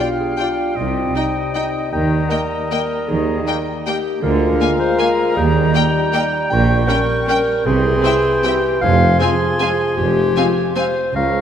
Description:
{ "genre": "classical", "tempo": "156 BPM", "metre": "3/4", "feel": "uneven beats, rubato", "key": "F minor from 6.5 s", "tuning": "A4 = 440 Hz", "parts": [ { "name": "rich studio violin section", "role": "melody", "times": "0.0-10.8 s", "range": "G5 to Ab5", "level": "-26 LUFS", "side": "left 4 dB", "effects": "none" }, { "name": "dark clarinet", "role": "second line", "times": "0.0-11.4 s", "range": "Eb4 to G5", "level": "-20 LUFS", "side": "left 2 dB", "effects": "none" }, { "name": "dark symphonic violin section", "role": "second line", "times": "0.0-10.9 s", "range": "D5 to G5", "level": "-30 LUFS", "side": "left 2 dB", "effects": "none" }, { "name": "silver concert flute", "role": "second line", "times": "0.0-11.4 s", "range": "G5 to Db6", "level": "-27 LUFS", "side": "left 1 dB", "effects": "none" }, { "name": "warm oboe", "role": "second line", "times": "0.0-11.4 s", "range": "Eb5 to Bb5", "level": "-26 LUFS", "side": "right 2 dB", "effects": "none" }, { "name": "mellow bassoon", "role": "accompaniment", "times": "0.0-11.4 s", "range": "E3 to Ab3", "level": "-26 LUFS", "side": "right 2 dB", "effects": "none" }, { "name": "warm studio viola section", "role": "accompaniment", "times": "0.0-10.8 s", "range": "Bb3 to F4", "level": "-28 LUFS", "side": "equal", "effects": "none" }, { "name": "warm French horn section", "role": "sustained chords", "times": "0.0-10.9 s", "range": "G3 to F4", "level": "-25 LUFS", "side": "left 4 dB", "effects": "none" }, { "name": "dark studio double bass section", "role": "bass", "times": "0.8-11.4 s", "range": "F1 to Eb2", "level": "-24 LUFS", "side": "right 3 dB", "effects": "none" }, { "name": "warm studio cello section", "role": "bass", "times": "0.8-11.4 s", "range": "Db2 to Eb3", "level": "-23 LUFS", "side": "right 2 dB", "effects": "none" }, { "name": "warm tuba", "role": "bass", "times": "0.8-11.4 s", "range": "F1 to Eb2", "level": "-25 LUFS", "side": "right 3 dB", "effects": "none" }, { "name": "timpani", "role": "percussion", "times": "8.8-9.4 s", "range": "F2", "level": "-29 LUFS", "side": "left 1 dB", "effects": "none" } ], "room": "wet concert hall reverb, RT60 2.2 s", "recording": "none", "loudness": "-14 LUFS", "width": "side -9 dB against mid", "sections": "0.0-11.4 A section", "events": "none", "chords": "0.0 G7(no3); 0.8 Cm; 1.9 Eb; 4.2 Bb7/D; 5.4 Eb; 6.5 Gdim/Bb; 7.7 C; 8.8 Fm" }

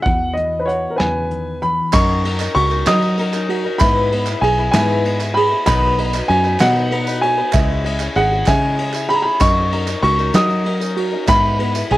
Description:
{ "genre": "indie folk with a building arrangement", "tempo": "64 BPM (dotted quarters)", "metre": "6/8", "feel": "straight", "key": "unclear", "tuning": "A4 = 440 Hz", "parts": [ { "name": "warm upright piano", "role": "melody", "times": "0.0-12.0 s", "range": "A#4 to D#6", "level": "-18 LUFS", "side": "equal", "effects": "cassette tape" }, { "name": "fingerpicked steel-string acoustic guitar", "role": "accompaniment", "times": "0.0-1.9 s", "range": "C#3 to F#4", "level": "-28 LUFS", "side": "left 4 dB", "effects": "cassette tape" }, { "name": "fingered electric bass", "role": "bass", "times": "0.1-12.0 s", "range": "G#1 to F#3", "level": "-20 LUFS", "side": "equal", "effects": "none" }, { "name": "soft brush drum kit", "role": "drums", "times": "0.1-12.0 s", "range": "crash cymbal, hi-hat, kick drum, ride cymbal, snare drum", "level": "-22 LUFS", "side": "equal", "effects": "cassette tape" }, { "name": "picked swing-style acoustic guitar", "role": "accompaniment", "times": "1.9-12.0 s", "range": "G#2 to B4", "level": "-23 LUFS", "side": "left 5 dB", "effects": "cassette tape" }, { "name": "ukulele", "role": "arpeggios", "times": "1.9-12.0 s", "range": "F#4 to E5", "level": "-24 LUFS", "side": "right 6 dB", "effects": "cassette tape, tape echo" }, { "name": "group handclap", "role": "percussion", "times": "1.9-12.0 s", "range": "none", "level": "-31 LUFS", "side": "right 7 dB", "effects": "none" }, { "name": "tambourine", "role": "percussion", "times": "1.9-11.9 s", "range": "none", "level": "-33 LUFS", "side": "right 7 dB", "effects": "none" } ], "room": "studio reverb", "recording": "home recording on cassette", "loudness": "-14 LUFS", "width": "side -16 dB against mid", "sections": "0.0-1.9 A section; 1.9-12.0 B section", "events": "none", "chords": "0.1 Eadd9; 1.9 F#6; 3.8 E; 5.7 B; 7.5 C#m; 9.4 F#6; 11.3 E" }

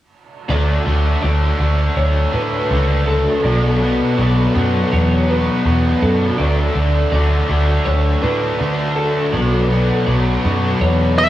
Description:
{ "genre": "rock", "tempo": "81 BPM", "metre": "4/4", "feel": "straight", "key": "D major", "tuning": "A4 = 440 Hz", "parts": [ { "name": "twelve-string electric guitar", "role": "arpeggios", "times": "0.5-11.3 s", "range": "A4 to D5", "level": "-23 LUFS", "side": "equal", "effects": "lush chorus, cassette tape, analog delay" }, { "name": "biting overdriven guitar", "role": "riff", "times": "0.5-11.3 s", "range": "B2 to D4", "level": "-23 LUFS", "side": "right 7 dB", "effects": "reverse reverb, cassette tape" }, { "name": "thick fuzz guitar", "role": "riff", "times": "0.5-11.3 s", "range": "B2 to D4", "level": "-19 LUFS", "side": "left 4 dB", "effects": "distortion, ensemble chorus, cassette tape" }, { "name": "vintage muted picked electric bass", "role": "bass", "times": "0.5-11.3 s", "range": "B1 to D3", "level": "-17 LUFS", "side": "equal", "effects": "none" }, { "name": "octave-fuzz lead guitar", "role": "melody", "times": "11.2-11.3 s", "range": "E5", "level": "-12 LUFS", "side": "right 1 dB", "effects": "distortion" } ], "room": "little or no reverb", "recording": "home recording on cassette, small room ambience", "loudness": "-14 LUFS", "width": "side -13 dB against mid", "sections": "0.5-11.3 A section", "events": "none", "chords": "0.5 D; 3.4 Bm7; 6.4 D; 9.3 Bm7" }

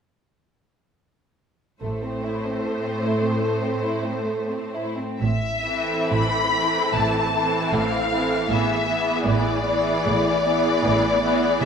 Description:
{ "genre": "classical, slow romantic movement for string orchestra", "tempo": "60-80 BPM", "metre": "4/4", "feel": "rubato", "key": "A minor", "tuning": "A4 = 440 Hz", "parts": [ { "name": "warm studio violin section", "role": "melody", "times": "1.8-11.7 s", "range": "C5 to B5", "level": "-24 LUFS", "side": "left 4 dB", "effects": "none" }, { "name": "rich studio violin section", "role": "second line", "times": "1.8-11.6 s", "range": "A3 to A4", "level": "-27 LUFS", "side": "equal", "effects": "none" }, { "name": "rich studio viola section", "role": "accompaniment", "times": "1.8-11.6 s", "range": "E3 to C4", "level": "-26 LUFS", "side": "right 2 dB", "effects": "none" }, { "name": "rich chamber double bass section", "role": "bass", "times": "1.8-11.7 s", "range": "A1", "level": "-29 LUFS", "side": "right 3 dB", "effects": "none" }, { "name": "rich studio cello section", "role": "bass", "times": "1.8-11.7 s", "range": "A2", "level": "-28 LUFS", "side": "right 2 dB", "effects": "none" } ], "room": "wet scoring stage reverb, RT60 1.4 s", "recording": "minimal, uncompressed stereo recording", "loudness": "-20 LUFS", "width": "side -6 dB against mid", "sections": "1.8-5.2 A section; 5.2-11.7 B section", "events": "none", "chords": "1.8 Am; 8.5 E7/A" }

